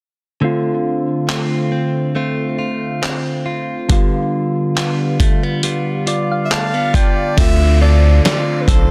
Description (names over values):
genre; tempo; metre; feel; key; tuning
contemporary R&B; 69 BPM; 4/4; swing 54% on 16ths; D dorian; A4 = 439 Hz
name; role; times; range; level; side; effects
soft electric-piano-like synth keys; accompaniment; 0.4-8.9 s; D3 to A5; -22 LUFS; equal; chorus
direct-recorded clean electric guitar; arpeggios; 0.4-8.9 s; D3 to A4; -24 LUFS; equal; delay
dusty soul sampler-style drum kit; drums; 1.3-8.9 s; handclaps, hi-hat, kick drum, snare drum; -19 LUFS; equal; none
breathy alto saxophone; melody; 6.5-8.9 s; B4 to F5; -23 LUFS; equal; delay
rubbery square bass; bass; 7.4-8.9 s; B1 to D2; -14 LUFS; equal; none
downlifter; sound effects; 7.4-8.9 s; none; -28 LUFS; equal; none
mallet-like synth pluck; texture; 7.8-8.9 s; none; barely audible; none; none
room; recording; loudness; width
light reverb, digital ambience; dense, heavily limited modern master; -16 LUFS; mono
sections
0.4-7.4 A section; 7.4-8.9 B section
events
synth keys fill 5.6-7.4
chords
0.4 Dm7; 3.9 G7/D; 7.4 Dm7